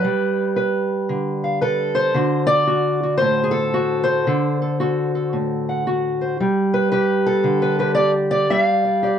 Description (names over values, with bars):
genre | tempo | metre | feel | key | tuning
acoustic country blues, solo or duo | 113 BPM | 4/4 | swing 65% on 8ths | D mixolydian | A4 = 439 Hz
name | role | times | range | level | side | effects
fingerpicked steel-string acoustic guitar | solo | 0.0-9.2 s | A2 to F#5 | -17 LUFS | equal | none
room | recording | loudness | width
moderate studio reverb, RT60 0.6 s | dark, warm production | -17 LUFS | side -8 dB against mid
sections
0.0-9.2 A section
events
none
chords
0.0 G; 2.1 D7; 6.4 G7